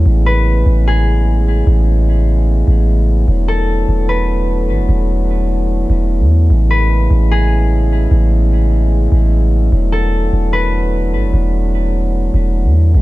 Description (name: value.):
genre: hip hop, atmospheric cloud-rap.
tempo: 149 BPM.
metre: 4/4.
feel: half-time.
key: A major.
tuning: A4 = 438 Hz.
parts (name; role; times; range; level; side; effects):
dark French horn section; sustained chords; 0.0-13.0 s; C#3 to E4; -20 LUFS; equal; none.
long sustained 808-style bass; bass; 0.0-13.0 s; E1 to E2; -12 LUFS; equal; none.
concert harp; melody; 0.3-12.6 s; G#4 to B4; -22 LUFS; left 2 dB; low-pass filter, ping-pong delay.
room: studio reverb.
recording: none.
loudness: -11 LUFS.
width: side -18 dB against mid.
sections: 0.0-13.0 A section.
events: none.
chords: 0.1 Amaj9; 3.3 E9sus4; 6.5 Amaj9; 9.7 E9sus4.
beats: | 0.06 0.46 0.86 1.27 | 1.67 2.07 2.48 2.88 | 3.28 3.68 4.09 4.49 | 4.89 5.29 5.70 6.10 | 6.50 6.90 7.31 7.71 | 8.11 8.52 8.92 9.32 | 9.72 10.13 10.53 10.93 | 11.33 11.74 12.14 12.54 | 12.95.